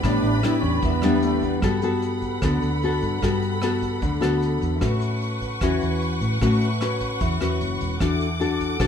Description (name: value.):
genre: bossa nova.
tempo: 151 BPM.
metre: 4/4.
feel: straight.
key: unclear.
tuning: A4 = 441 Hz.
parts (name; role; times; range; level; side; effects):
breathy bright wooden-headed alto flute; second line; 0.0-1.6 s; A3 to E4; -27 LUFS; right 6 dB; none.
nylon-string guitar; accompaniment; 0.0-8.9 s; A2 to B4; -24 LUFS; left 4 dB; none.
warm studio string section; sustained chords; 0.0-8.9 s; A4 to D6; -30 LUFS; right 1 dB; none.
hollow-body short-scale fingered electric bass; bass; 0.0-8.9 s; E1 to A2; -25 LUFS; right 1 dB; none.
vintage brush drum kit; drums; 0.0-8.9 s; hi-hat, kick drum, rim click; -30 LUFS; right 1 dB; none.
room: light reverb.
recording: minimal, uncompressed stereo recording.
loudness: -20 LUFS.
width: side -8 dB against mid.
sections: 0.0-1.6 A section; 1.6-8.9 B section.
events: none.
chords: 0.0 A9sus4; 1.6 Gmaj9; 4.8 A69; 8.0 E9sus4.